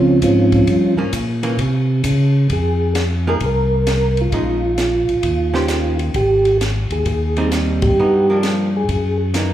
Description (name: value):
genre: soul jazz organ trio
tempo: 132 BPM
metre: 4/4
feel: swing 67% on 8ths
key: F minor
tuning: A4 = 440 Hz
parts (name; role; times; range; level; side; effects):
- percussive tonewheel organ; melody; 0.0-9.2 s; F3 to Bb4; -17 LUFS; right 1 dB; slow rotary speaker, chorus vibrato, slapback echo
- tonewheel organ; bass; 0.0-9.5 s; Ab1 to Db3; -18 LUFS; equal; overdrive, slow rotary speaker
- compact cocktail drum kit; drums; 0.2-9.5 s; hi-hat, kick drum, ride cymbal, snare drum; -25 LUFS; left 1 dB; none
- archtop guitar, miked and amplified; accompaniment; 1.0-9.5 s; Eb3 to C5; -23 LUFS; right 2 dB; none
room: light reverb, studio reverb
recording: live gig heard through the venue's PA, club reverb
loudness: -14 LUFS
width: side -12 dB against mid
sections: 0.0-2.5 A section; 2.5-9.5 B section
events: tonewheel organ solo 0.0-2.5; band accent 7.7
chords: 0.0 Bbm9 (rootless); 0.7 Gm7b5; 1.6 N.C.; 2.5 Fm; 4.3 Bbm7; 5.2 Eb13; 6.1 Abmaj7; 8.0 Gm7; 8.9 Gb6